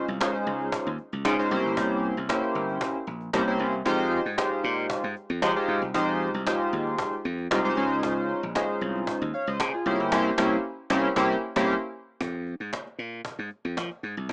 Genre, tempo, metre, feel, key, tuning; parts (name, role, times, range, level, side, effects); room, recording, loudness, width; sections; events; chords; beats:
early-eighties boogie funk; 115 BPM; 4/4; straight; F minor; A4 = 436 Hz
chorused polysynth; accompaniment; 0.0-11.7 s; Ab3 to F5; -25 LUFS; equal
slap bass; bass; 0.1-14.3 s; G1 to F3; -30 LUFS; equal
cajon; drums; 0.1-14.3 s; -30 LUFS; equal
small room ambience; rough home demo mix, small speaker sound; -24 LUFS; side -31 dB against mid
0.0-12.2 A section; 12.2-14.3 B section
band accent 10.1-12.2
0.0 Dbmaj9; 1.5 C7b9; 3.9 Fm9; 7.8 Dbmaj9; 9.9 C7b9; 12.2 Fm
0.20 0.73 1.25 | 1.77 2.29 2.81 3.33 | 3.86 4.38 4.90 5.42 | 5.94 6.46 6.99 7.51 | 8.03 8.55 9.07 9.60 | 10.12 10.64 11.16 11.68 | 12.21 12.73 13.25 13.77 | 14.29